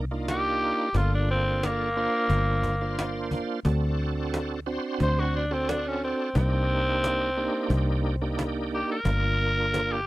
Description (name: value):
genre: straight-eighth soul blues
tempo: 89 BPM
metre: 4/4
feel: straight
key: G minor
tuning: A4 = 440 Hz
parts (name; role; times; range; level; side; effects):
- bright tonewheel organ; accompaniment; 0.0-10.0 s; Bb3 to C5; -30 LUFS; right 2 dB; slow rotary speaker, overdrive, chorus vibrato
- fingered electric bass; bass; 0.0-10.1 s; G1 to D2; -27 LUFS; equal; none
- raspy tenor saxophone; melody; 0.3-10.1 s; Bb3 to C5; -27 LUFS; equal; none
- cajon; drums; 0.3-9.9 s; none; -32 LUFS; equal; none
room: little or no reverb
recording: dry, close 1970s-style studio recording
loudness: -24 LUFS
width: side -18 dB against mid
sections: 0.0-10.1 A section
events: tenor saxophone solo 0.0-10.1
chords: 0.0 Cm7; 0.9 Gm7; 3.6 D7; 6.4 Cm7; 9.1 Gm7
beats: 0.27 | 0.95 1.62 2.30 2.97 | 3.65 4.33 5.00 5.68 | 6.35 7.03 7.70 8.38 | 9.05 9.73